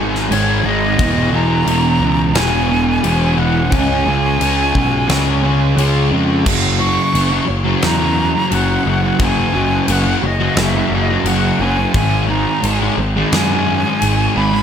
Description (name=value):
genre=rock, shoegaze and dream pop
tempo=88 BPM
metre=4/4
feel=straight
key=unclear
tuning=A4 = 440 Hz
part: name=fuzz guitar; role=riff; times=0.0-14.6 s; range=E2 to C#4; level=-16 LUFS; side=equal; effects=distortion, analog chorus
part: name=fuzz picked electric bass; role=bass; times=0.0-14.6 s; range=E1 to F#2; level=-18 LUFS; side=equal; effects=overdrive
part: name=huge arena drum kit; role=drums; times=0.1-14.2 s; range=crash cymbal, kick drum, snare drum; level=-21 LUFS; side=left 1 dB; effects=none
part: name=bright silver concert flute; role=melody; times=0.3-14.6 s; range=C#5 to C#6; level=-20 LUFS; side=right 1 dB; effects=diffuse ambient delay
room=light reverb, studio reverb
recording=none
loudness=-13 LUFS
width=side -8 dB against mid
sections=0.0-6.5 A section; 6.5-14.6 B section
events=none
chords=0.0 G#5; 1.0 E; 3.7 C#5; 6.5 F#5; 12.0 G#sus2